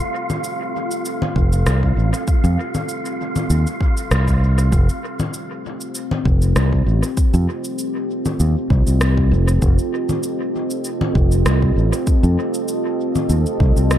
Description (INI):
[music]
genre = ambient dub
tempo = 98 BPM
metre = 4/4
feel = swing 54% on 16ths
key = F mixolydian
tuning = A4 = 440 Hz
[part]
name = deep dark ambient pad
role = sustained chords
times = 0.0-14.0 s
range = C4 to F5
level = -24 LUFS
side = right 1 dB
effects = chorus, built-in reverb
[part]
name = wind-like tuned noise texture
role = texture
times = 0.0-4.7 s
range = F4 to F5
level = -29 LUFS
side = equal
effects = built-in reverb
[part]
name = electronic congas, cabasa and rim click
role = drums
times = 0.3-14.0 s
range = none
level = -26 LUFS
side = left 1 dB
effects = dub echo
[part]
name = fingered electric bass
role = bass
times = 1.4-14.0 s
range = F1 to F2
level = -15 LUFS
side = equal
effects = none
[part]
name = electronic kick drum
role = drums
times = 1.4-13.7 s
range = none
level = -18 LUFS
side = equal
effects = none
[sound]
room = little or no reverb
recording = echo-heavy mix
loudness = -16 LUFS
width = side -11 dB against mid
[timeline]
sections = 0.0-4.7 A section; 4.7-14.0 B section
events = band accent 4.1-4.4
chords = 0.0 Fadd9; 4.7 F9